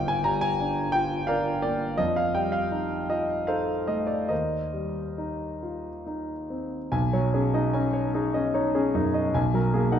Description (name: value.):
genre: classical, impressionist solo piano.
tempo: 67-90 BPM.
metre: 3/4.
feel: rubato.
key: Eb major, B major from 6.9 s.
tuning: A4 = 440 Hz.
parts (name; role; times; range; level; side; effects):
clear grand piano; solo; 0.0-10.0 s; G1 to Bb5; -24 LUFS; equal; none.
room: wet recital hall reverb, RT60 1.5 s.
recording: dark, warm production.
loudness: -24 LUFS.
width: side -9 dB against mid.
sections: 0.0-6.9 A section; 6.9-10.0 B section.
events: none.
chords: 0.0 Gm7; 2.0 F9; 4.3 Eb69; 6.9 B69; 9.3 G#m9/B.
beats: 0.61 1.29 | 2.00 2.73 3.48 | 4.31 5.19 6.07 | 6.93 7.73 8.54 | 9.33.